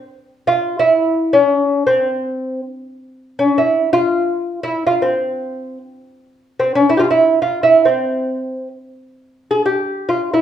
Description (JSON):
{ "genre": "Persian modal ensemble", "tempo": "free time", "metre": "none", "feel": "none", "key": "C dastgah chahargah", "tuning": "A4 = 437 Hz", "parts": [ { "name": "lute", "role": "solo", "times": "0.5-10.4 s", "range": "C4 to Ab4+45c", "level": "-14 LUFS", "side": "equal", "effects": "none" } ], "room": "wet large studio reverb, RT60 0.9 s", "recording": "band playing live in one room", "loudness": "-14 LUFS", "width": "side -10 dB against mid", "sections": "0.0-9.0 A section; 9.0-10.4 A section", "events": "none", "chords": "none", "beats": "free time" }